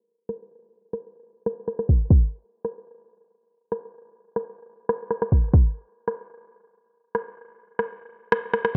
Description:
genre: dubstep.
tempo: 140 BPM.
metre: 4/4.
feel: half-time.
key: none.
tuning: none.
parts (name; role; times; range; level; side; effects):
electronic rim click; drums; 0.3-8.7 s; none; -27 LUFS; equal; low-pass filter on snare, low-pass filter on hats.
electronic kick drum; drums; 1.9-2.2, 5.3-5.6 s; none; -19 LUFS; equal; none.
room: light reverb.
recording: low-pass filter, nothing above 10.6 kHz.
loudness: -25 LUFS.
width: mono.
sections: 0.0-8.8 A section.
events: filter sweep on drum 0.0-8.8; filter sweep 0.0-8.8.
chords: none.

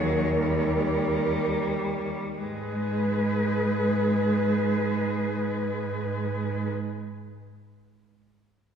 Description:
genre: classical, lyrical piece for cello ensemble.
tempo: 28-33 BPM (dotted quarters).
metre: 6/8.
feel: rubato.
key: G# minor.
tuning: A4 = 442 Hz.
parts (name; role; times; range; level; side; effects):
warm cello; melody; 0.0-6.7 s; B4 to C#5; -31 LUFS; left 4 dB; none.
warm cello; second line; 0.0-6.7 s; G#4 to A#4; -34 LUFS; right 5 dB; none.
rich cello; accompaniment; 0.0-6.7 s; F#3 to G#3; -31 LUFS; left 1 dB; none.
rich cello; bass; 0.0-6.7 s; D#2 to G#2; -27 LUFS; right 2 dB; none.
room: wet scoring stage reverb, RT60 2.0 s.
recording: heard from further back in the room.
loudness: -24 LUFS.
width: side -7 dB against mid.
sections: 0.0-2.4 A section; 2.4-6.2 B section.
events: slowing down 0.0-2.4.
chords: 0.4 D#7; 2.4 G#m.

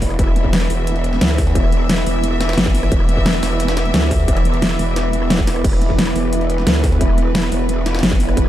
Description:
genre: dark technical drum and bass.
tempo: 176 BPM.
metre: 4/4.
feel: straight.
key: unclear.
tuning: A4 = 440 Hz.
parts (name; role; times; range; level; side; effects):
clear studio string section; sustained chords; 0.0-8.5 s; E3 to E5; -24 LUFS; left 1 dB; sidechain pumping.
growl bass; bass; 0.0-8.5 s; E1 to D2; -18 LUFS; equal; distortion, chorus, tube saturation.
dubstep drum kit; drums; 0.0-8.5 s; crash cymbal, hi-hat, rim click, snare drum; -20 LUFS; equal; none.
electronic kick drum; drums; 0.0-8.4 s; none; -18 LUFS; equal; distortion.
jungle sampler-style drum kit; drums; 0.0-8.5 s; hi-hat, snare drum; -29 LUFS; equal; high-pass filter on hats, high-pass filter on snare, high-pass filter on room.
deep dark ambient pad; texture; 0.0-8.5 s; B3 to D6; -23 LUFS; right 2 dB; chorus, built-in reverb, sidechain pumping.
room: little or no reverb.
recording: dark, warm production.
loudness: -14 LUFS.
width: side -12 dB against mid.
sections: 0.0-8.5 A section.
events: none.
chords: 0.0 E5.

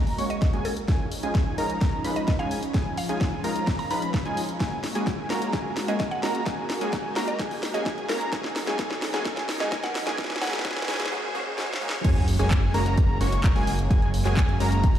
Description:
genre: EDM, festival progressive house.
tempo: 129 BPM.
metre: 4/4.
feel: straight.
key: F# major.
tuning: A4 = 440 Hz.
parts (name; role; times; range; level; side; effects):
lush unison pad; sustained chords; 0.0-15.0 s; B2 to F#4; -35 LUFS; equal; chorus, phaser, sidechain pumping.
wide unison lead; arpeggios; 0.0-15.0 s; G#5 to C#6; -32 LUFS; equal; cassette tape, sidechain pumping, dub echo.
supersaw stab; riff; 0.0-15.0 s; G#3 to C#5; -31 LUFS; equal; sidechain pumping, low-pass filter, dub echo.
riser and sub drop; sound effects; 3.0-13.9 s; none; -36 LUFS; equal; none.
house drum kit; drums; 0.1-15.0 s; crash cymbal, handclaps, hi-hat, snare drum; -32 LUFS; equal; overdrive, studio reverb.
mallet-like synth pluck; melody; 0.3-11.1 s; A#4 to A#5; -35 LUFS; equal; chorus, dub echo.
electronic kick drum; drums; 0.4-14.9 s; none; -24 LUFS; equal; overdrive, studio reverb.
fat analog bass; bass; 12.0-15.0 s; F#1; -24 LUFS; equal; sidechain pumping.
room: light reverb, digital ambience.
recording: played on a big sound system in a bare room, large studio reverb, high-pass filter.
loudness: -23 LUFS.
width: side -10 dB against mid.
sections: 0.0-12.0 A section; 12.0-15.0 B section.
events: build-up 0.0-12.0; drum fill 0.0-11.1, 11.6-12.0; filter sweep on supersaw synth 0.0-12.0; filter sweep on analog synth lead 0.0-12.0; filter sweep 0.0-12.0; drop 12.0-15.0; impact 12.0-13.9.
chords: 0.0 F#add9; 0.9 C#add9; 4.6 F#add9; 8.3 B; 12.0 F#add9.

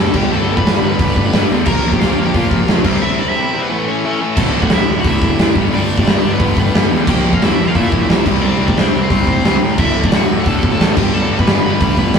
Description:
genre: punk rock.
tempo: 178 BPM.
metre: 4/4.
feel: straight.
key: unclear.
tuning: A4 = 440 Hz.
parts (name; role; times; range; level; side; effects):
cranked stack guitar; melody; 0.0-12.2 s; B3 to B5; -21 LUFS; equal; overdrive.
distorted electric guitar; riff; 0.0-12.2 s; D2 to C4; -26 LUFS; equal; none.
tight distorted guitar; riff; 0.0-12.2 s; D2 to C4; -22 LUFS; left 6 dB; distortion.
tight distorted guitar; riff; 0.0-12.2 s; D2 to C4; -24 LUFS; right 5 dB; distortion.
fuzz picked electric bass; bass; 0.0-12.2 s; D1 to Bb2; -19 LUFS; equal; overdrive.
big rock drum kit; drums; 0.1-12.2 s; crash cymbal, hi-hat, kick drum, snare drum; -14 LUFS; equal; none.
room: light reverb.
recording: rough rehearsal-room recording, tube saturation.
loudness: -12 LUFS.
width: side -6 dB against mid.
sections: 0.0-4.4 A section; 4.4-12.2 A section.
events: break 3.0-4.4.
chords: 0.1 G; 1.7 Bb5; 2.9 C; 3.7 A; 4.4 D; 5.6 G; 7.1 Bb5; 8.3 C5; 9.8 D; 11.0 G.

